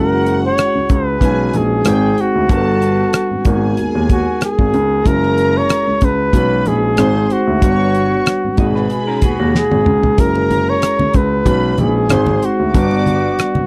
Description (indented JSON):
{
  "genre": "lush 1970s-style soul",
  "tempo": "94 BPM",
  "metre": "4/4",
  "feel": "swing 54% on 16ths",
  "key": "unclear",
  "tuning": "A4 = 443 Hz",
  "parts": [
    { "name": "clear flugelhorn", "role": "melody", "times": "0.0-13.7 s", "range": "F#4 to C#5", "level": "-20 LUFS", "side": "equal", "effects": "none" },
    { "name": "warm studio string section", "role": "second line", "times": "0.0-13.4 s", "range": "F#4 to D6", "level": "-28 LUFS", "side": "equal", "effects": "none" },
    { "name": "mellow tine electric piano", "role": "accompaniment", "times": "0.0-13.7 s", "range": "B2 to B#4", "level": "-22 LUFS", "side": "equal", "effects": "none" },
    { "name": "warm grand piano", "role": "bass", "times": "0.0-13.6 s", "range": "F#1 to D#2", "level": "-20 LUFS", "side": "equal", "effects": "none" },
    { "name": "damped 70s drum kit", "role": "drums", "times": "0.3-13.6 s", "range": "hi-hat, kick drum, rim click, snare drum, toms", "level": "-18 LUFS", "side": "equal", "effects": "none" },
    { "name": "electric guitar through a small old amp", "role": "riff", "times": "8.6-10.1 s", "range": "A#3 to D#5", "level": "-27 LUFS", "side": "equal", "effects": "none" },
    { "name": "congas", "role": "percussion", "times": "10.4-13.7 s", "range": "none", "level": "-24 LUFS", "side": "equal", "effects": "none" }
  ],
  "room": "little or no reverb",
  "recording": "dry, close 1970s-style studio recording",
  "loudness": "-15 LUFS",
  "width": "mono",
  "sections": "0.0-13.7 A section",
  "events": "drum fill 9.5-10.2",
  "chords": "0.0 F#sus2; 1.2 B69; 1.9 G#maj7; 2.5 Gmaj7; 3.5 G#m9; 5.1 F#9; 6.3 B69; 7.0 G#; 7.6 Gmaj7; 8.6 G#m9; 10.2 F#9; 11.5 B69; 12.1 G#; 12.7 Gmaj7"
}